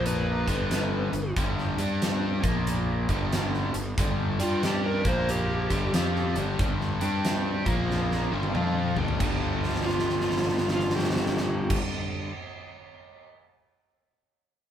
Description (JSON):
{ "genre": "blues rock power trio and southern rock", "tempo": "92 BPM", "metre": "4/4", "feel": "swing 64% on 8ths", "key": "unclear", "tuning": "A4 = 440 Hz", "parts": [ { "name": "overdriven slide guitar", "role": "melody", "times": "0.0-11.8 s", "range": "F4 to C5", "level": "-30 LUFS", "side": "equal", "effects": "none" }, { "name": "overdriven electric guitar", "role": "riff", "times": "0.0-12.3 s", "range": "G2 to G4", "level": "-30 LUFS", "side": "left 1 dB", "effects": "none" }, { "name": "fuzz fingered electric bass", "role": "bass", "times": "0.0-11.8 s", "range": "G1 to G2", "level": "-29 LUFS", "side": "left 1 dB", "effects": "overdrive" }, { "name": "huge arena drum kit", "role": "drums", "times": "0.1-13.3 s", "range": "crash cymbal, hi-hat, kick drum, snare drum, toms", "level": "-30 LUFS", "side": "right 1 dB", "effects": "none" } ], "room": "moderate studio ambience, RT60 0.5 s", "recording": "band playing live in one room", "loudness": "-24 LUFS", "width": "side -10 dB against mid", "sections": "0.0-9.2 A section; 9.2-11.8 B section", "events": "drum fill 7.9-9.2, 9.5-11.7", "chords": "0.4 G; 2.4 Bb5; 3.0 G5; 5.0 Bb5; 5.6 G5; 7.6 Bb5; 8.2 G5" }